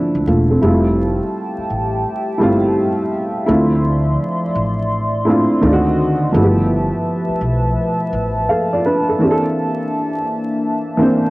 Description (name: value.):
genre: hip hop.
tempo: 84 BPM.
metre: 4/4.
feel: swing 65% on 16ths.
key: unclear.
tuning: A4 = 436 Hz.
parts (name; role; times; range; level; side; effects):
dark upright piano; accompaniment; 0.0-11.3 s; D3 to F5; -16 LUFS; equal; low-pass filter, cassette tape.
upright bass; bass; 0.1-8.5 s; E1 to D2; -19 LUFS; equal; none.
hollow soft pad; sustained chords; 0.6-11.3 s; F3 to C6; -21 LUFS; equal; chorus, low-pass filter, cassette tape.
room: light reverb, studio ambience.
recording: home recording on cassette, vinyl crackle.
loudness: -14 LUFS.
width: side -20 dB against mid.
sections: 0.6-11.3 A section.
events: none.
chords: 0.0 Dm9; 0.6 Fmaj9; 3.5 Dm9; 5.6 D7b9; 6.3 G13; 9.2 C13.